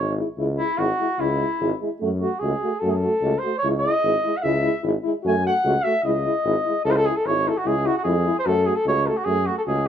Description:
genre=balkan folk, Balkan brass band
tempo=149 BPM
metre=2/4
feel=straight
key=C# harmonic minor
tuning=A4 = 441 Hz
part: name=warm flugelhorn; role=melody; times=0.0-9.9 s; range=E4 to G#5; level=-22 LUFS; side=equal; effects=plate reverb
part: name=warm tuba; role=bass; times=0.0-9.9 s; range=G#1 to F#2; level=-25 LUFS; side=left 1 dB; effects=none
part: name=warm French horn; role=accompaniment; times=0.2-9.7 s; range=E4 to F#4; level=-27 LUFS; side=left 5 dB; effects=none
part: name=warm euphonium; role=accompaniment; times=0.2-9.7 s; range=G#3 to A3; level=-29 LUFS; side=right 6 dB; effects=none
room=moderate studio ambience, RT60 0.5 s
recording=none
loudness=-19 LUFS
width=side -9 dB against mid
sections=0.4-6.9 A section; 6.9-9.9 B section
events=flugelhorn solo 0.4-6.9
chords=0.4 C#m; 2.0 F#m; 3.6 C#m; 5.3 F#m; 6.1 C#m; 8.5 F#m

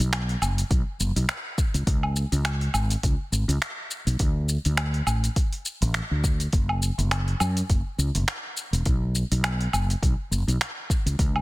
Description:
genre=sunset chillout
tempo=103 BPM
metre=4/4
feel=swing 57% on 16ths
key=F# minor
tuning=A4 = 440 Hz
part: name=mellow fretless electric bass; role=bass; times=0.0-11.4 s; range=E1 to F#2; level=-24 LUFS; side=equal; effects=none
part: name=deep house drum kit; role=drums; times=0.0-11.4 s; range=finger snaps, hi-hat, shaker, woodblock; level=-28 LUFS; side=equal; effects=soft clipping on snare
part: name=electronic kick drum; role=drums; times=0.7-11.3 s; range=none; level=-23 LUFS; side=equal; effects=none
room=digital ambience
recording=dense, heavily limited modern master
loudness=-22 LUFS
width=side -20 dB against mid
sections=0.0-11.4 A section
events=none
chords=none

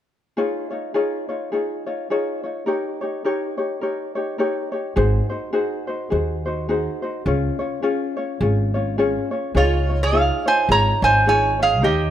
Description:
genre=Hawaiian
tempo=105 BPM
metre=4/4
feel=swing 59% on 8ths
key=Db major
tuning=A4 = 440 Hz
part: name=ukulele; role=accompaniment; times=0.4-12.1 s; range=Db4 to Db5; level=-22 LUFS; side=left 2 dB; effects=none
part: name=upright bass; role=bass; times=5.0-12.1 s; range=Ab1 to Eb2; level=-21 LUFS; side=right 1 dB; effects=none
part: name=metal-body resonator slide guitar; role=melody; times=9.6-12.1 s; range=F4 to Bb5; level=-17 LUFS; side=right 2 dB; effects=none
room=light reverb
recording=none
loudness=-19 LUFS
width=side -11 dB against mid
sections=0.4-9.6 A section; 9.6-12.1 B section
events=none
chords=0.4 Dbadd9; 2.7 Eb7; 5.0 Ab7; 7.3 Db; 9.6 Dbadd9

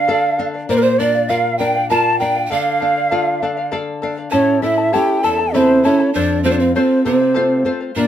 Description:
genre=andean folk, Andean ensemble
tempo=66 BPM (dotted quarters)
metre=6/8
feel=straight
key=D minor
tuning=A4 = 440 Hz
part: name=mellow hollow quena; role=melody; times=0.0-8.1 s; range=Bb4 to A5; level=-17 LUFS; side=equal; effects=none
part: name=breathy mellow pan flute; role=second line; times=0.0-8.1 s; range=C4 to A5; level=-18 LUFS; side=right 4 dB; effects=none
part: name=charango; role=accompaniment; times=0.0-8.1 s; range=E4 to A5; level=-23 LUFS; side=left 3 dB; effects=none
part: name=nylon-string guitar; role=accompaniment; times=0.0-8.1 s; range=E2 to A4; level=-21 LUFS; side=left 3 dB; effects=none
room=light reverb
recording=minimal, uncompressed stereo recording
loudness=-14 LUFS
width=side -10 dB against mid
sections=0.0-4.3 A section; 4.3-8.1 B section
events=none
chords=0.0 Dm; 0.7 Bb; 2.5 Dm; 4.3 A; 6.1 F

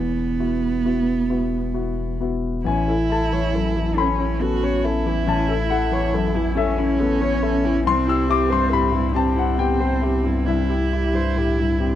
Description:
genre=neoclassical piano and strings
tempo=46 BPM (dotted quarters)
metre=6/8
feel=rubato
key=unclear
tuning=A4 = 442 Hz
part: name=dark cello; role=second line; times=0.0-12.0 s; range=B3 to F#4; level=-25 LUFS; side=right 6 dB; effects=none
part: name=warm grand piano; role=accompaniment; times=0.0-12.0 s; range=A1 to E6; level=-22 LUFS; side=left 6 dB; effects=none
part: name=saturated sub bass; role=bass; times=0.0-12.0 s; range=E1 to C2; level=-24 LUFS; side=equal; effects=none
part: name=dark viola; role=accompaniment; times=2.7-12.0 s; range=C4 to C#5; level=-26 LUFS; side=right 2 dB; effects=none
room=small room ambience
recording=dry, close 1970s-style studio recording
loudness=-18 LUFS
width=side -11 dB against mid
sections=0.0-2.7 A section; 2.7-12.0 B section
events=none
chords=0.0 Esus2; 2.7 A; 7.9 C

